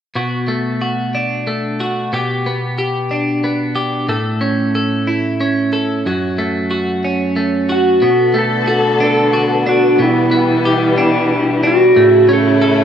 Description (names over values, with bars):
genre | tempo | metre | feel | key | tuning
pop | 61 BPM (dotted quarters) | 6/8 | straight | B minor | A4 = 440 Hz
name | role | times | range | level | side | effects
twelve-string electric guitar | accompaniment | 0.2-12.8 s | F#2 to A4 | -16 LUFS | equal | none
clean lap steel guitar | melody | 7.7-12.8 s | E4 to A4 | -13 LUFS | equal | none
warm symphonic string section | sustained chords | 8.0-12.8 s | B2 to A4 | -17 LUFS | left 2 dB | none
room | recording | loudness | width
moderate lush hall reverb, RT60 2.5 s | rough home demo mix | -13 LUFS | side -8 dB against mid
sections
0.2-8.0 A section; 8.0-12.8 B section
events
none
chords
0.2 Bm7; 2.1 G/B; 4.1 A; 6.1 F#m; 8.0 Bm7; 10.0 G6/B; 12.0 A